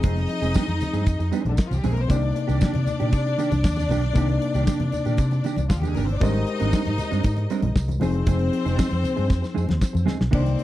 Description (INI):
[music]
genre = disco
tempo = 117 BPM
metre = 4/4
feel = straight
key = unclear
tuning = A4 = 441 Hz
[part]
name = clear studio string section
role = second line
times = 0.0-10.6 s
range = D3 to Eb5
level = -29 LUFS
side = left 2 dB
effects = none
[part]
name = mellow electric guitar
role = accompaniment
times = 0.0-10.6 s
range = Eb3 to Bb4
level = -29 LUFS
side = right 7 dB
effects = none
[part]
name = overdriven reed electric piano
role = accompaniment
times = 0.0-10.6 s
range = C3 to Eb5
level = -28 LUFS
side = left 4 dB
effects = none
[part]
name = fingered electric bass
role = bass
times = 0.0-10.5 s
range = F1 to C3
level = -24 LUFS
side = equal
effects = none
[part]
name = damped 70s drum kit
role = drums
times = 0.0-10.6 s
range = crash cymbal, hi-hat, kick drum, snare drum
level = -21 LUFS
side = equal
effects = none
[part]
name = congas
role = percussion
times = 0.0-10.6 s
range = none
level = -32 LUFS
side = left 2 dB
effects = none
[part]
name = tambourine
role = percussion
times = 0.0-10.2 s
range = none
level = -45 LUFS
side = right 12 dB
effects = none
[sound]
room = little or no reverb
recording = dry, close 1970s-style studio recording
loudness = -20 LUFS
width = side -14 dB against mid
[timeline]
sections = 0.0-10.3 A section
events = drum fill 9.3-10.3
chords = 0.0 Fm7; 2.1 Cm9; 6.2 Abmaj9#11; 8.0 Fm7